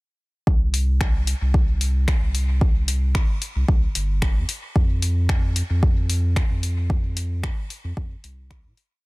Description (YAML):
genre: dub techno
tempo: 112 BPM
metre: 4/4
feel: straight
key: unclear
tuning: A4 = 439 Hz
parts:
  - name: warm sub bass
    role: bass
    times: 0.5-8.7 s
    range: G1 to Bb2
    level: -22 LUFS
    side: equal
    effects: sidechain pumping
  - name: electronic kick drum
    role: drums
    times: 0.5-8.6 s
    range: none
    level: -20 LUFS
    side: equal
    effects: overdrive
  - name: deep house drum kit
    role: drums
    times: 0.7-8.9 s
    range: finger snaps, hi-hat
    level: -30 LUFS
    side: left 2 dB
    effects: overdrive, soft clipping on snare
room: little or no reverb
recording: dense, heavily limited modern master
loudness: -19 LUFS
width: side -24 dB against mid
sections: 0.5-9.0 groove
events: fade-out 6.2-9.0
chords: none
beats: | 0.47 1.01 1.54 2.08 | 2.61 3.15 3.69 4.22 | 4.76 5.29 5.83 6.36 | 6.90 7.43 7.97 8.51